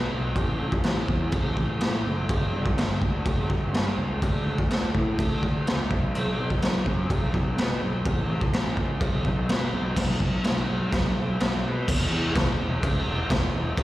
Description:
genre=garage rock duo or trio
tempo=125 BPM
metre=4/4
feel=straight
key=unclear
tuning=A4 = 440 Hz
part: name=fuzz picked electric bass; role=bass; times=0.0-13.8 s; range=E1 to B2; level=-27 LUFS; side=equal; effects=overdrive, tube saturation
part: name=raw garage drum kit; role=drums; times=0.4-13.8 s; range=crash cymbal, kick drum, snare drum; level=-25 LUFS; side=equal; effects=none
room=little or no reverb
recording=live gig heard through the venue's PA, recital hall reverb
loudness=-23 LUFS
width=side -16 dB against mid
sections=0.0-10.0 A section; 10.0-11.9 B section; 11.9-13.8 C section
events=none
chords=none

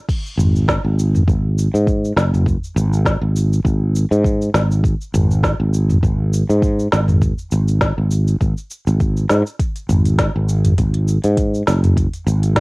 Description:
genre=organic downtempo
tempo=101 BPM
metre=4/4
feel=swing 55% on 16ths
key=unclear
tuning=A4 = 439 Hz
part: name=electronic kick drum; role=drums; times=0.1-12.6 s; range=none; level=-20 LUFS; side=equal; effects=cassette tape
part: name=organic electronic drum kit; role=drums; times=0.1-12.6 s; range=cabasa, crash cymbal, hi-hat, snare drum, toms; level=-20 LUFS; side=equal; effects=cassette tape
part: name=sustaining fretless electric bass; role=bass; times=0.4-12.6 s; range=F#1 to G#2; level=-16 LUFS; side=equal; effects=sidechain pumping
room=little or no reverb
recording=home recording on cassette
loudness=-14 LUFS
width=side -26 dB against mid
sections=0.0-12.6 A section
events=none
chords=none

